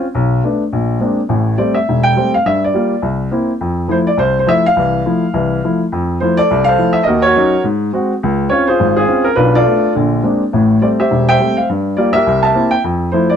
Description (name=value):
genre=jazz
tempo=208 BPM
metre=4/4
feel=swing 61% on 8ths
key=F major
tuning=A4 = 440 Hz
part: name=warm upright piano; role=solo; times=0.0-13.4 s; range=E1 to A5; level=-12 LUFS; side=equal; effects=none
room=light reverb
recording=close, detailed microphones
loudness=-12 LUFS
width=side -8 dB against mid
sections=0.0-5.9 A section; 5.9-13.4 A section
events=none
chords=0.1 Bm7; 0.7 Bb9; 1.3 Am7; 2.4 Gm7; 3.0 C7; 3.6 Fmaj7; 7.1 Ebm7; 7.6 Ab7; 8.2 Dbmaj7; 9.4 Bm7b5; 9.9 Bb9; 10.5 Am7; 11.7 Gm7; 12.2 C7; 12.8 Fmaj7